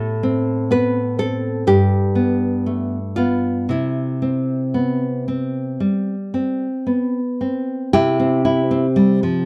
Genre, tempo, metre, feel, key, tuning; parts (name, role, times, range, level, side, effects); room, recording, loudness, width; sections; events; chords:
romantic duo for nylon-string guitar and classical guitar; 55-64 BPM; 4/4; rubato; C major; A4 = 440 Hz
nylon-string guitar; melody; 0.0-6.8 s; E4 to B4; -25 LUFS; equal
nylon-string guitar; accompaniment; 0.0-9.5 s; G2 to G4; -20 LUFS; equal
light reverb; dry, close 1970s-style studio recording; -19 LUFS; mono
0.0-7.9 A section; 7.9-9.5 B section
0.0 Amadd9; 1.7 G; 3.7 C